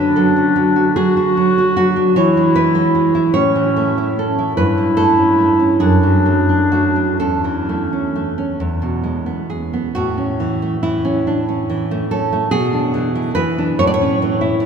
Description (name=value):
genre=romantic duo for clarinet and classical guitar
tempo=42-52 BPM (dotted quarters)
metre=6/8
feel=rubato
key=A major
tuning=A4 = 440 Hz
part: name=clear clarinet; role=melody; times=0.0-9.2 s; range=C#4 to F#4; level=-17 LUFS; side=equal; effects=none
part: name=nylon-string guitar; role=accompaniment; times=0.0-14.7 s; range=E2 to D5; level=-16 LUFS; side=right 1 dB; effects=none
room=wet cathedral reverb, RT60 5.4 s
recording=recorded in a church or concert hall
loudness=-14 LUFS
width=side -6 dB against mid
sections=0.0-10.0 A section; 10.0-14.7 B section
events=none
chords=0.0 D; 2.2 E; 3.4 A; 4.6 A7/G; 5.8 D/F#; 7.2 A/E; 8.6 E; 10.0 A; 12.5 E7/B; 13.8 A